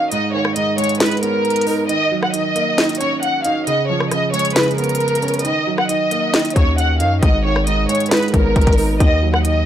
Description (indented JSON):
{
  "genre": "hip hop, trap",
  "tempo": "135 BPM",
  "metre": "4/4",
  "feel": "half-time",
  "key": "Eb minor",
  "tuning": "A4 = 440 Hz",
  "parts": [
    { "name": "warm studio violin section", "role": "melody", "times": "0.0-9.7 s", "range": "Bb4 to Gb5", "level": "-18 LUFS", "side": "equal", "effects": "low-pass filter, analog delay" },
    { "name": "dark baby grand piano", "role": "accompaniment", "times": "0.0-9.7 s", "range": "Ab2 to Eb4", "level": "-21 LUFS", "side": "right 3 dB", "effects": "low-pass filter" },
    { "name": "trap drum kit", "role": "drums", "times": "0.1-9.6 s", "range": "handclaps, hi-hat, kick drum, rim click, snare drum", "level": "-18 LUFS", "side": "left 1 dB", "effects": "none" },
    { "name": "distorted 808-style bass", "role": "bass", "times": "6.6-9.6 s", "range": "Ab1 to Gb2", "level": "-18 LUFS", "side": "left 1 dB", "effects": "distortion" }
  ],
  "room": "small room ambience",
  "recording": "dry, gritty hardware recording, transformer saturation",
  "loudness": "-14 LUFS",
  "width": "side -10 dB against mid",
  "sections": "0.0-9.7 A section",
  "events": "break 0.0-5.4; kick muted 5.4-6.3",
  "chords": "0.1 Abm; 1.9 Ebm7; 3.7 Db7; 5.4 Ebm7; 7.2 Abm; 9.0 Ebm"
}